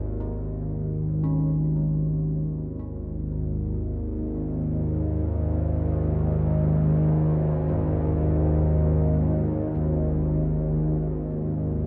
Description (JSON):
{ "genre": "dark ambient drone", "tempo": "free time", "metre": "none", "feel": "none", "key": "unclear", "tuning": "A4 = 438 Hz", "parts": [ { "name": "bowed-like drone", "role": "drone", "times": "0.0-11.9 s", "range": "Ab1 to Eb2", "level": "-25 LUFS", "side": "equal", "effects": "built-in reverb" }, { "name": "gamelan-type bossed gongs", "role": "arpeggios", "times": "0.2-11.9 s", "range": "Eb2 to Eb4", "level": "-38 LUFS", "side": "equal", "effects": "delay" } ], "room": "wet cathedral reverb, RT60 7.0 s", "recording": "in a vast, echoing space", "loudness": "-25 LUFS", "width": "mono", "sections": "0.0-11.9 A section", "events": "fade-in on kettle gongs 0.0-11.9; filter sweep on synth drone 0.0-11.9", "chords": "0.0 Ab5", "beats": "free time" }